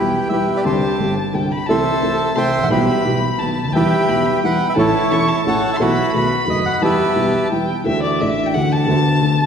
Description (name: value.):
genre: tango.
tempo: 175 BPM.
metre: 3/4.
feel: rubato.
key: E minor.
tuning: A4 = 440 Hz.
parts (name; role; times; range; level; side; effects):
bandoneon; melody; 0.0-7.5 s; E4 to G5; -19 LUFS; right 1 dB; none.
warm violin; second line; 0.0-9.5 s; D5 to C#6; -23 LUFS; left 2 dB; none.
clear concert grand piano; accompaniment; 0.0-9.5 s; E1 to A4; -18 LUFS; equal; none.
room: wet concert hall reverb, RT60 2.1 s.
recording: heard from further back in the room.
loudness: -15 LUFS.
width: side -7 dB against mid.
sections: 0.0-7.9 A section; 7.9-9.5 B section.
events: violin solo 7.9-9.5.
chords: 0.0 Em; 0.7 Csus2; 1.7 Am/C; 2.7 Em/B; 3.4 B; 3.7 Em; 4.8 A; 5.8 B7sus4; 6.1 B7; 6.8 Em; 7.9 Dadd9; 8.9 Bm7/D.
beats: 0.32 | 0.66 1.00 1.35 | 1.69 2.03 2.37 | 2.71 3.05 3.40 | 3.74 4.08 4.43 | 4.77 5.12 5.46 | 5.80 6.14 6.48 | 6.83 7.17 7.51 | 7.86 8.20 8.54 | 8.89 9.23.